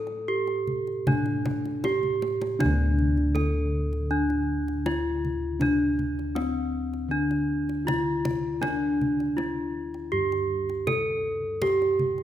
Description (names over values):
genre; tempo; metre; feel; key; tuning
Javanese gamelan; 80 BPM; 4/4; straight; D slendro; A4 = 438 Hz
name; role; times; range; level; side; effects
gamelan-type bronze metallophone; melody; 0.0-12.2 s; C4-25c to A4; -26 LUFS; equal; none
gamelan-type bossed gongs; bass; 0.0-12.2 s; D2 to A4; -29 LUFS; equal; none
kendang; percussion; 0.1-12.2 s; none; -32 LUFS; equal; none
room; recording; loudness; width
light reverb; minimal, uncompressed stereo recording; -24 LUFS; side -11 dB against mid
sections
0.0-2.6 A section; 2.6-12.2 B section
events
drum fill 2.0-2.6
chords
none